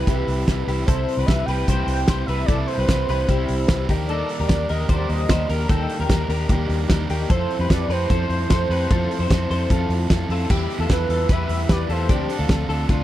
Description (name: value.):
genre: jangly indie pop.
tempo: 150 BPM.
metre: 4/4.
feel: straight.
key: C major.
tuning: A4 = 440 Hz.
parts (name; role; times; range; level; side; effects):
warm velvety synth lead; melody; 0.0-12.3 s; B4 to G5; -27 LUFS; right 1 dB; chorus, tape echo.
overdriven semi-hollow guitar; accompaniment; 0.0-13.0 s; C3 to B4; -28 LUFS; right 3 dB; none.
direct-recorded clean electric guitar; arpeggios; 0.0-13.0 s; D4 to C5; -29 LUFS; left 6 dB; ensemble chorus.
vintage muted fingered electric bass; bass; 0.0-13.0 s; C2 to F2; -24 LUFS; equal; none.
loose indie drum kit; drums; 0.1-13.0 s; crash cymbal, hi-hat, kick drum, snare drum; -22 LUFS; equal; none.
room: little or no reverb.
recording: none.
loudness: -18 LUFS.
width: side -13 dB against mid.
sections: 0.0-10.5 A section; 10.5-13.0 B section.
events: none.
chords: 0.0 Cmaj7; 3.9 Ebmaj7; 7.3 Fmaj7; 10.5 Em; 12.1 Dm7.